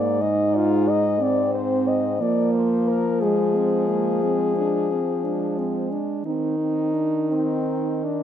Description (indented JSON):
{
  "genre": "classical, lyrical piece for horn quartet",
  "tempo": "59 BPM (dotted quarters)",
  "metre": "12/8",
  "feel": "rubato",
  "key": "unclear",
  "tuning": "A4 = 439 Hz",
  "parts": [
    { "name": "warm French horn", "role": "melody", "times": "0.0-8.2 s", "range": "C4 to Eb5", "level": "-24 LUFS", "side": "left 6 dB", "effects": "none" },
    { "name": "mellow French horn", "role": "second line", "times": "0.0-8.2 s", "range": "Ab3 to Eb4", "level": "-28 LUFS", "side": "right 10 dB", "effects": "none" },
    { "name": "warm French horn", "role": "bass", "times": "0.0-8.2 s", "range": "Ab2 to F3", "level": "-27 LUFS", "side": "right 2 dB", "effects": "none" },
    { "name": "mellow French horn", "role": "accompaniment", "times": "0.2-8.1 s", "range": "Ab3 to Eb4", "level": "-24 LUFS", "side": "equal", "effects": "none" }
  ],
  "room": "light reverb",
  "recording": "close, detailed microphones",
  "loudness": "-20 LUFS",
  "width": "side -10 dB against mid",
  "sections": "0.0-8.2 A section",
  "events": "none",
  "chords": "0.0 Ab; 2.2 Fm; 6.2 Cm/Eb"
}